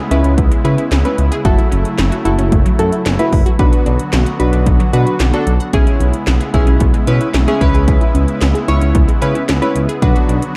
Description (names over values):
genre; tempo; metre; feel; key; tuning
synth-pop; 112 BPM; 4/4; straight; B dorian; A4 = 440 Hz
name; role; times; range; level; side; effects
brassy analog pad; sustained chords; 0.0-10.6 s; C#3 to F#4; -24 LUFS; equal; chorus
unison pluck; arpeggios; 0.0-10.4 s; F#3 to F#5; -26 LUFS; equal; tape echo
warm analog keys; accompaniment; 0.1-10.4 s; C#4 to C#5; -21 LUFS; equal; chorus
smooth synth bass; bass; 0.1-10.4 s; F#1 to C#3; -17 LUFS; equal; none
80s electronic pad drums; drums; 0.1-10.5 s; handclaps, hi-hat, kick drum, snare drum; -18 LUFS; equal; none
room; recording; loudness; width
light reverb; dark, warm production; -14 LUFS; mono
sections
0.0-10.6 A section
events
none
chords
0.0 C#m7; 1.4 F#m7; 3.6 Bm; 5.7 E6/B; 7.6 C#m7; 10.0 Bm